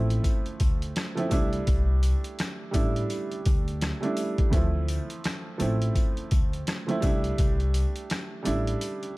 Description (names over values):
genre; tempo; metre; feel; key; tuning
hip hop, boom-bap hip-hop; 84 BPM; 4/4; swing 61% on 16ths; unclear; A4 = 440 Hz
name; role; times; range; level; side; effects
dark grand piano; accompaniment; 0.0-9.2 s; E3 to E4; -30 LUFS; right 2 dB; cassette tape, high-pass filter, low-pass filter
upright bass; bass; 0.0-8.7 s; A1 to D2; -27 LUFS; equal; none
boom bap sampler-style drum kit; drums; 0.1-9.2 s; hi-hat, kick drum, rim click, snare drum; -26 LUFS; equal; none
sleigh bells; percussion; 0.2-9.0 s; none; -46 LUFS; left 7 dB; none
room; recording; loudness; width
small room ambience; dark, warm production; -24 LUFS; side -21 dB against mid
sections
0.0-9.2 A section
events
none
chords
0.0 Dm9; 1.3 C69; 4.5 Dm9; 7.0 C69